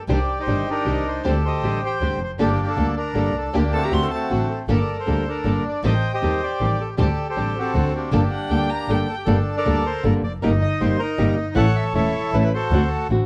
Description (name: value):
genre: tango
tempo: 157 BPM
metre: 3/4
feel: rubato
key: G harmonic minor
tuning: A4 = 440 Hz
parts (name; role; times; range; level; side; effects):
- bandoneon; melody; 0.0-13.1 s; A3 to G5; -27 LUFS; equal; none
- nylon-string guitar; accompaniment; 0.1-13.3 s; C3 to A4; -26 LUFS; equal; none
- warm studio string section; stabs; 0.1-9.1 s; Bb3 to C5; -35 LUFS; equal; none
- dark double bass; bass; 0.1-13.3 s; E1 to Eb2; -25 LUFS; equal; none
- rich violin; second line; 3.7-4.4, 8.3-9.3 s; F#5 to C6; -32 LUFS; equal; none
- vintage hollow-body jazz guitar; second line; 3.7-4.4 s; G4 to A4; -30 LUFS; equal; none
room: moderate studio ambience, RT60 0.5 s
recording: dark, warm production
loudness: -21 LUFS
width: mono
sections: 0.0-9.3 A section; 9.3-13.3 B section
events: none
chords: 0.1 Cmadd9; 1.2 D7sus4; 2.4 Gmadd9; 3.5 Gm/D; 3.9 D7; 4.7 Gmadd9; 5.8 Am7b5; 7.0 D7sus4; 7.7 D7; 8.1 Gmadd9; 10.4 Cm7/G; 11.6 A; 12.7 D7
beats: | 0.09 0.48 0.86 | 1.24 1.63 2.01 | 2.39 2.77 3.15 | 3.54 3.92 4.31 | 4.69 5.08 5.46 | 5.84 6.22 6.60 | 6.98 7.36 7.75 | 8.13 8.51 8.90 | 9.28 9.67 10.05 | 10.43 10.81 11.19 | 11.57 11.95 12.34 | 12.72 13.10